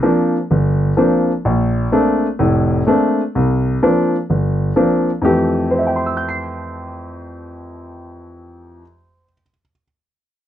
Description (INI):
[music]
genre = solo jazz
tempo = 127 BPM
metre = 4/4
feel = swing 67% on 8ths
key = F major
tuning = A4 = 436 Hz
[part]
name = warm grand piano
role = solo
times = 0.0-9.8 s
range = F1 to C7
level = -15 LUFS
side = equal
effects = none
[sound]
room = light reverb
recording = dry, close 1970s-style studio recording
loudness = -14 LUFS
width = side -11 dB against mid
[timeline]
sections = 0.0-5.2 A section; 5.2-9.0 B section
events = none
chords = 0.0 C9sus4; 1.4 Bbmaj9; 3.3 C9sus4; 5.2 Fmaj9